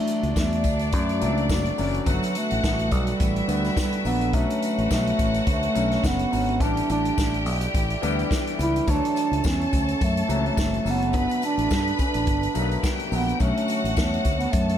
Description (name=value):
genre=disco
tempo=106 BPM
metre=4/4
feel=swing 56% on 16ths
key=D major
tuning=A4 = 440 Hz
part: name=dark bass clarinet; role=melody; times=0.0-14.8 s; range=F#3 to E4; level=-25 LUFS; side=right 1 dB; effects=none
part: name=bright symphonic string section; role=second line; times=0.0-14.8 s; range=D4 to B5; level=-31 LUFS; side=left 1 dB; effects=none
part: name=clear baby grand piano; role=accompaniment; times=0.0-14.8 s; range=D3 to C#5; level=-32 LUFS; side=left 4 dB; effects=none
part: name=warm French horn section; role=sustained chords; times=0.0-14.8 s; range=D3 to D5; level=-34 LUFS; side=right 1 dB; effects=none
part: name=vintage drum kit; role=drums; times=0.1-14.8 s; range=hi-hat, kick drum, snare drum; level=-27 LUFS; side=equal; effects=none
part: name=tambourine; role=percussion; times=0.1-14.7 s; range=none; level=-43 LUFS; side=left 8 dB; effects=none
part: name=fingered electric bass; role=bass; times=0.2-14.8 s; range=F#1 to G2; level=-26 LUFS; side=equal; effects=none
room=light reverb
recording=none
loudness=-21 LUFS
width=side -10 dB against mid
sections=0.0-14.8 A section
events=none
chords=0.0 Dmaj7; 2.1 Gmaj9; 4.3 Bm9; 6.6 A7sus4; 8.9 Dmaj7; 11.1 Gmaj9; 13.4 Bm9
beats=0.35 0.92 1.49 | 2.06 2.63 3.20 3.77 | 4.34 4.91 5.47 6.04 | 6.61 7.17 7.74 8.31 | 8.87 9.44 10.01 10.57 | 11.14 11.70 12.27 12.83 | 13.40 13.97 14.53